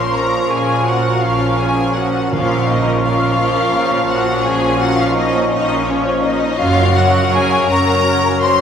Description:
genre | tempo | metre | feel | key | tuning
classical, slow romantic movement for symphony orchestra | 55 BPM (dotted quarters) | 12/8 | rubato | Bb minor | A4 = 440 Hz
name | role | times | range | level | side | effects
rich studio violin section | melody | 0.0-8.6 s | Db5 to C6 | -20 LUFS | left 4 dB | none
mellow cor anglais | second line | 0.0-8.6 s | Bb4 | -26 LUFS | right 3 dB | none
rich chamber violin section | second line | 0.0-8.6 s | Db4 to C5 | -23 LUFS | left 3 dB | none
silver concert flute | second line | 0.0-8.6 s | Db6 | -22 LUFS | equal | none
rich studio viola section | accompaniment | 0.0-8.6 s | F3 to Db4 | -21 LUFS | right 1 dB | none
warm bassoon | accompaniment | 0.0-8.6 s | F3 to Gb3 | -24 LUFS | equal | none
mellow French horn section | sustained chords | 0.0-8.6 s | F3 to Db4 | -23 LUFS | left 2 dB | none
clear chamber double bass section | bass | 0.1-8.6 s | Gb1 to Bb1 | -24 LUFS | right 4 dB | none
clear studio cello section | bass | 0.1-8.6 s | Gb2 to Bb2 | -22 LUFS | right 2 dB | none
timpani | percussion | 2.3-3.3 s | Bb2 | -27 LUFS | right 2 dB | none
room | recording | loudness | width
wet cathedral reverb, RT60 4.6 s | recorded in a church or concert hall | -13 LUFS | side -8 dB against mid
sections
0.0-8.6 A section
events
none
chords
0.0 Bbm; 6.6 Gb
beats
0.14 1.23 | 2.33 3.38 4.46 5.53 | 6.59 7.69

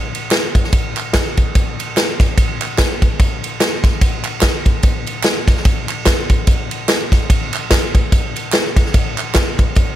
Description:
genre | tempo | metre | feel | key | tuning
gospel | 146 BPM | 4/4 | swing 57% on 8ths | none | none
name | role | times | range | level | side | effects
swinging big-band drum kit | drums | 0.1-9.9 s | kick drum, ride cymbal, snare drum | -14 LUFS | equal | none
tambourine and handclaps | percussion | 0.1-9.9 s | none | -25 LUFS | right 5 dB | none
room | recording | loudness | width
little or no reverb | none | -14 LUFS | side -12 dB against mid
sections
0.0-10.0 A section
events
none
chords
none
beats
0.32 | 0.73 1.14 1.55 1.96 | 2.37 2.78 3.19 3.60 | 4.01 4.42 4.83 5.25 | 5.66 6.07 6.48 6.89 | 7.30 7.71 8.12 8.53 | 8.95 9.36 9.77

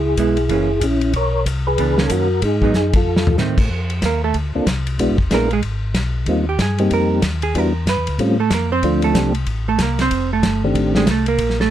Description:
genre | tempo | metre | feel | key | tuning
soul jazz organ trio | 187 BPM | 4/4 | swing 61% on 8ths | Bb major from 3.7 s | A4 = 439 Hz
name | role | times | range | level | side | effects
percussive tonewheel organ | melody | 0.0-11.1 s | Eb3 to C#5 | -18 LUFS | equal | slow rotary speaker, chorus vibrato
mellow tonewheel organ | bass | 0.0-11.7 s | E1 to A2 | -21 LUFS | left 1 dB | chorus vibrato, slow rotary speaker
hollow-body jazz guitar | accompaniment | 0.2-11.7 s | D#3 to B#4 | -20 LUFS | right 6 dB | none
warm soul drum kit | drums | 0.2-11.7 s | crash cymbal, hi-hat, kick drum, ride cymbal, snare drum, toms | -22 LUFS | left 1 dB | none
room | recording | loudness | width
little or no reverb | dark, warm production | -15 LUFS | side -11 dB against mid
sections
0.0-3.7 A section; 3.7-11.7 B section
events
drum fill 2.7-3.4; band accent 2.9; hollow-body jazz guitar solo 3.7-11.7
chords
0.0 C#m7; 0.5 F#7; 1.1 Bmaj9; 2.4 G#m7; 3.1 F7; 3.7 Bbmaj7; 5.0 E7; 6.3 Eb69; 7.6 Em9; 8.2 A7alt; 8.8 Dm7; 10.1 F13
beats
0.18 0.50 0.82 | 1.15 1.47 1.78 2.11 | 2.43 2.75 3.07 3.39 | 3.71 4.03 4.35 4.67 | 4.99 5.31 5.63 5.95 | 6.27 6.59 6.91 7.23 | 7.55 7.87 8.19 8.51 | 8.83 9.15 9.47 9.79 | 10.11 10.43 10.75 11.07 | 11.39

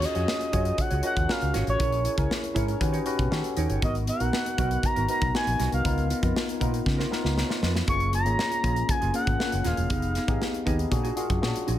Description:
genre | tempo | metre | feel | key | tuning
polished 1980s jazz-funk pop | 118 BPM | 4/4 | straight | Eb minor | A4 = 443 Hz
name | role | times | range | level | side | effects
expressive synth lead | melody | 0.0-10.7 s | Db5 to Db6 | -30 LUFS | equal | chorus, digital delay
mellow tine electric piano | accompaniment | 0.0-11.8 s | Bb3 to Eb5 | -30 LUFS | left 3 dB | overdrive, wide subtle chorus
mellow electric guitar | riff | 0.0-11.8 s | Bb3 to Eb5 | -35 LUFS | right 7 dB | analog chorus
fretless electric bass | bass | 0.0-11.8 s | Eb1 to Eb3 | -27 LUFS | equal | none
modern studio drum kit | drums | 0.0-11.8 s | hi-hat, kick drum, snare drum | -29 LUFS | equal | none
room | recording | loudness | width
small room ambience | none | -23 LUFS | side -12 dB against mid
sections
0.0-11.8 A section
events
drum fill 6.9-7.9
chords
0.0 Ebm11; 1.8 Bbm7b5; 2.8 Eb7alt; 3.8 Abm9; 5.8 Db13; 7.9 Gbmaj9; 9.9 Fm7b5; 10.9 Bb7b13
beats
0.28 0.79 1.29 | 1.80 2.30 2.81 3.32 | 3.82 4.33 4.84 5.34 | 5.85 6.36 6.86 7.37 | 7.88 8.38 8.89 9.40 | 9.90 10.41 10.92 11.43

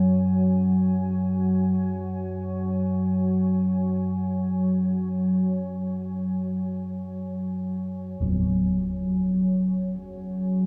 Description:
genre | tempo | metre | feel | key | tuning
dark ambient drone | free time | none | none | unclear | A4 = 442 Hz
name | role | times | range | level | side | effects
deep dark ambient pad | sustained chords | 0.0-10.7 s | F#4 to G#5 | -40 LUFS | equal | chorus, built-in reverb
deep rumbling drone | drone | 0.0-10.7 s | F#2 to F#3 | -26 LUFS | equal | built-in reverb
quartz singing bowl | arpeggios | 8.2-10.7 s | F#3 | -26 LUFS | equal | none
concert bass drum | percussion | 8.2-8.4 s | none | -34 LUFS | equal | low-pass filter on kick
room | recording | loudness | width
wet huge ambient reverb, RT60 7.9 s | in a vast, echoing space | -25 LUFS | mono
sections
0.0-8.2 A section; 8.2-10.7 B section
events
fade-out on ambient pad 0.0-8.2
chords
0.0 F#sus2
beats
free time

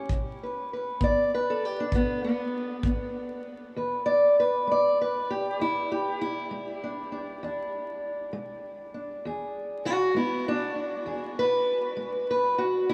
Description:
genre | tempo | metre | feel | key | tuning
acoustic country blues, solo or duo | 66 BPM (dotted quarters) | 12/8 | straight | E mixolydian | A4 = 440 Hz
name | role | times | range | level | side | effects
fingerpicked steel-string acoustic guitar | melody | 0.0-12.9 s | E2 to D5 | -28 LUFS | equal | none
kick drum | drums | 0.1-3.0 s | none | -31 LUFS | equal | none
room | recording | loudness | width
wet huge ambient reverb, RT60 8.0 s | in a vast, echoing space, vinyl crackle, small room ambience | -28 LUFS | mono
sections
0.0-3.8 A section; 3.8-12.9 B section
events
steel-string acoustic guitar solo 3.8-12.9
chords
0.1 N.C.; 3.8 E7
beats
| 0.10 1.01 1.93 2.84 | 3.75 4.66 5.58 6.49 | 7.40 8.31 9.22 10.14 | 11.05 11.97 12.88

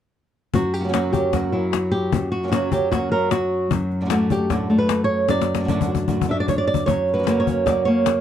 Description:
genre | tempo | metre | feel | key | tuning
flamenco | 151 BPM | 4/4 | straight | unclear | A4 = 439 Hz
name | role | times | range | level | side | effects
flamenco guitar | melody | 0.5-8.2 s | F#2 to E5 | -20 LUFS | equal | none
flamenco guitar | stabs | 0.5-8.1 s | F#2 to F#4 | -26 LUFS | right 4 dB | none
cajon | percussion | 0.5-8.2 s | none | -24 LUFS | left 8 dB | none
room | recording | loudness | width
small room ambience | dry, close 1970s-style studio recording | -18 LUFS | side -10 dB against mid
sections
0.5-8.2 A section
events
drum fill 5.3-6.9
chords
0.5 F#; 3.7 D/F#; 6.9 F#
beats
| 0.54 0.94 1.33 1.73 | 2.13 2.52 2.92 3.32 | 3.71 4.11 4.51 4.90 | 5.30 5.70 6.09 6.49 | 6.88 7.28 7.68 8.07

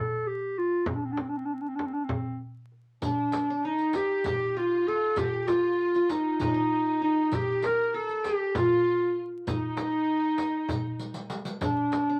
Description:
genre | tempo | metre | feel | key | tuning
Turkish makam ensemble | 195 BPM (eighths) | 7/8 | straight | unclear | A4 = 441 Hz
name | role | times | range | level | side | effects
warm clarinet | melody | 0.0-12.2 s | C4 to Bb4 | -28 LUFS | equal | none
darbuka | percussion | 0.9-12.1 s | none | -40 LUFS | equal | none
frame drum | percussion | 0.9-12.1 s | none | -38 LUFS | equal | none
qanun | second line | 3.0-12.2 s | D4-30c to Bb4 | -38 LUFS | equal | none
rich studio violin section | second line | 3.0-12.2 s | D4-30c to Bb4 | -44 LUFS | equal | none
riq | percussion | 3.0-12.1 s | none | -43 LUFS | equal | none
room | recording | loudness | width
moderate small room reverb, RT60 0.6 s | vinyl crackle | -28 LUFS | mono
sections
0.0-3.0 A section; 3.0-12.2 B section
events
drum fill 11.0-11.6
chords
none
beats
0.25 0.56 | 0.87 1.18 1.48 1.79 2.10 2.40 2.71 | 3.02 3.33 3.63 3.94 4.25 4.56 4.86 | 5.17 5.48 5.79 6.09 6.40 6.71 7.02 | 7.32 7.63 7.94 8.24 8.55 8.86 9.17 | 9.47 9.78 10.09 10.40 10.70 11.01 11.32 | 11.62 11.93

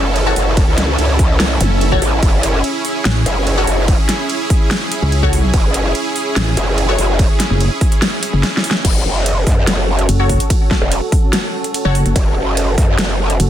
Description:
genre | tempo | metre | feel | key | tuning
heavy wobble dubstep | 145 BPM | 4/4 | half-time | F# minor | A4 = 441 Hz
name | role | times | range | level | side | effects
supersaw pad | sustained chords | 0.0-13.5 s | C#4 to A4 | -21 LUFS | right 2 dB | sidechain pumping, low-pass filter
growl bass | bass | 0.0-13.4 s | E1 to F#2 | -16 LUFS | equal | chorus, overdrive
big-room dance drum kit | drums | 0.2-13.5 s | crash cymbal, hi-hat, ride cymbal, snare drum | -20 LUFS | equal | overdrive
orchestra-hit-like synth stab | stabs | 0.3-7.0, 10.2-11.9 s | F#4 to C#5 | -23 LUFS | left 4 dB | built-in reverb, phaser, ping-pong delay
electronic kick drum | drums | 0.6-12.9 s | none | -14 LUFS | equal | overdrive
pulsing pluck wobble bass | bass | 1.6-13.5 s | F#1 to C#2 | -14 LUFS | equal | chorus, overdrive
zap | sound effects | 1.6-1.7 s | none | -23 LUFS | equal | none
room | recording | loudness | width
digital ambience | dense, heavily limited modern master | -12 LUFS | side -11 dB against mid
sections
0.0-8.8 A section; 8.8-13.5 A section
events
drop 0.0-8.8, 8.8-13.5; drum fill 8.4-8.8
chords
0.0 F#m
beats
0.16 | 0.57 0.98 1.40 1.81 | 2.23 2.64 3.05 3.47 | 3.88 4.29 4.71 5.12 | 5.54 5.95 6.36 6.78 | 7.19 7.61 8.02 8.43 | 8.85 9.26 9.68 10.09 | 10.50 10.92 11.33 11.74 | 12.16 12.57 12.98 13.40

